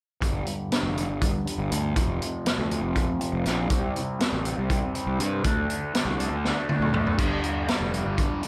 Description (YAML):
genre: psychedelic rock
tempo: 241 BPM (eighths)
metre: 7/8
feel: straight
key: unclear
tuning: A4 = 440 Hz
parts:
  - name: fuzz guitar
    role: riff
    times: 0.2-8.5 s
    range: F2 to D4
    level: -32 LUFS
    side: equal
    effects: distortion, phaser, low-pass filter
  - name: fuzz picked electric bass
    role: bass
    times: 0.2-8.3 s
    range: F1 to G2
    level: -31 LUFS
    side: equal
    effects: overdrive
  - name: raw garage drum kit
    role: drums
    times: 0.2-8.5 s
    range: crash cymbal, hi-hat, kick drum, snare drum, toms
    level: -29 LUFS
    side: equal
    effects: none
room: light reverb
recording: none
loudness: -26 LUFS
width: mono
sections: 0.2-8.5 A section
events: filter sweep on distorted electric guitar 0.2-8.5; drum fill 6.4-7.2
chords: 0.2 G5; 2.0 F5; 3.7 C5; 5.5 D5; 7.2 G5